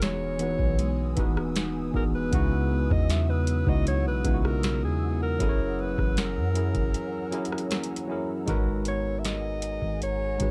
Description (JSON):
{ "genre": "contemporary R&B", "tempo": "78 BPM", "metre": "4/4", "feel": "straight", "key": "G# minor", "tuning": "A4 = 437 Hz", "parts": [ { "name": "clear alto saxophone", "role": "melody", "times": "0.0-10.5 s", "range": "G#4 to E5", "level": "-35 LUFS", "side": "equal", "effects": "plate reverb" }, { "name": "tine electric piano", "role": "accompaniment", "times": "0.0-10.5 s", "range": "C#3 to C#5", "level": "-32 LUFS", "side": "equal", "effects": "cassette tape" }, { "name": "ethereal airy pad", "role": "sustained chords", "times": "0.1-10.5 s", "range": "B3 to E6", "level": "-44 LUFS", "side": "equal", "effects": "ensemble chorus, built-in reverb, cassette tape" }, { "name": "nylon-string guitar", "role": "arpeggios", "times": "0.0-10.5 s", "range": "F#2 to A#4", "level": "-42 LUFS", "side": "equal", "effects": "none" }, { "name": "soft 808-style bass", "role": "bass", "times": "0.0-10.5 s", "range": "E1 to F#2", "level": "-31 LUFS", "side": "equal", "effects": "none" }, { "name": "booming analog drum machine", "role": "drums", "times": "0.0-10.5 s", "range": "hi-hat, kick drum, rim click, snare drum", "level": "-30 LUFS", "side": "equal", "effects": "none" } ], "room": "light reverb", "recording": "home recording on cassette", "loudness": "-27 LUFS", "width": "mono", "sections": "0.0-8.5 A section; 8.5-10.5 B section", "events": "break 6.9-8.5", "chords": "0.0 Emaj7; 2.3 C#m11; 5.4 F#7; 8.5 G#m9", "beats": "0.02 0.79 1.55 | 2.32 3.09 3.86 4.63 | 5.40 6.17 6.94 7.71 | 8.48 9.25 10.02" }